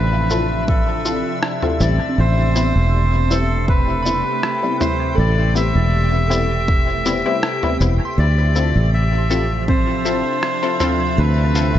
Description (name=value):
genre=ambient dub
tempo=80 BPM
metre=4/4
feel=straight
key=D dorian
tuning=A4 = 443 Hz
part: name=melodica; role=melody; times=0.0-11.8 s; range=A4 to E5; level=-22 LUFS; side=equal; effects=dub echo
part: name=soft additive organ-like pad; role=sustained chords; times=0.0-11.8 s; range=C3 to E5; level=-25 LUFS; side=right 1 dB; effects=ensemble chorus, built-in reverb
part: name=soft synth bell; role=arpeggios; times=0.0-11.8 s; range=C4 to C6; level=-30 LUFS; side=right 3 dB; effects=chorus, tape echo
part: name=fingered electric bass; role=bass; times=0.0-11.8 s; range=E1 to D2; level=-17 LUFS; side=equal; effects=none
part: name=filtered dub chord stab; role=stabs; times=0.3-11.8 s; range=G3 to A4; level=-24 LUFS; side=left 4 dB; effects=chorus, dub echo
part: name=lo-fi sampler-style drum kit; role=drums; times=0.3-11.7 s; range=rim click, shaker, toms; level=-25 LUFS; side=equal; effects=studio reverb, dub echo
part: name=electronic kick drum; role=drums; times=0.7-9.8 s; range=none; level=-18 LUFS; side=equal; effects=overdrive, studio reverb
room=moderate spring reverb, RT60 1.6 s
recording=nothing above 7.8 kHz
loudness=-15 LUFS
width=side -11 dB against mid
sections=0.0-11.8 A section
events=none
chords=0.0 Dm9; 2.2 Am9; 8.2 Dm9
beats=0.68 1.43 | 2.18 2.93 3.68 4.43 | 5.18 5.93 6.68 7.43 | 8.18 8.93 9.68 10.43 | 11.18